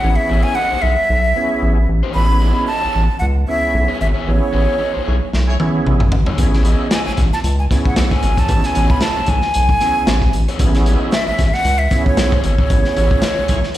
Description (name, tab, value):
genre	funk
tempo	114 BPM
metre	4/4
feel	swing 56% on 16ths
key	unclear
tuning	A4 = 440 Hz
part	breathy jazz flute	melody	0.0-13.8 s	C#5 to B5	-19 LUFS	right 1 dB	slapback echo
part	raw garage guitar	accompaniment	0.0-13.6 s	B3 to D#5	-25 LUFS	left 5 dB	overdrive, slapback echo
part	tonewheel organ	stabs	0.0-13.3 s	B3 to G#4	-22 LUFS	right 3 dB	overdrive, chorus vibrato, slow rotary speaker, slapback echo
part	round analog bass	bass	0.0-13.6 s	G#1 to C#2	-16 LUFS	equal	none
part	warm horn section	second line	5.1-5.5, 13.5-13.6 s	E4 to C#5	-27 LUFS	left 1 dB	slapback echo
part	crunchy breakbeat drum kit	drums	5.3-13.8 s	hi-hat, kick drum, snare drum, toms	-17 LUFS	equal	none
room	light reverb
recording	live gig heard through the venue's PA, recital hall reverb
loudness	-13 LUFS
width	side -14 dB against mid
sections	0.0-13.8 A section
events	band accent 4.3-6.4, 12.7-13.8; drum fill 5.3-6.4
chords	0.0 Amaj9